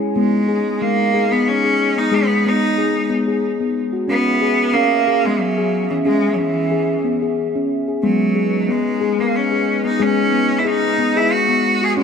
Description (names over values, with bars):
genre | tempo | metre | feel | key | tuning
world meditative, meditative tuned percussion | 91 BPM | 3/4 | swing 54% on 16ths | G# minor | A4 = 439 Hz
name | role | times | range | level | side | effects
warbly tape-like pad | sustained chords | 0.0-12.0 s | C#3 to G#5 | -26 LUFS | right 2 dB | chorus, built-in reverb
steel tongue drum | arpeggios | 0.0-12.0 s | G#3 to G#4 | -18 LUFS | left 3 dB | none
bright cello | melody | 0.2-12.0 s | E3 to G#4 | -18 LUFS | right 2 dB | ping-pong delay
room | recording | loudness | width
moderate church reverb, RT60 3.3 s | none | -15 LUFS | side -6 dB against mid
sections
0.2-12.0 A section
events
none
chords
0.2 G#m; 4.1 C#m; 8.0 G#m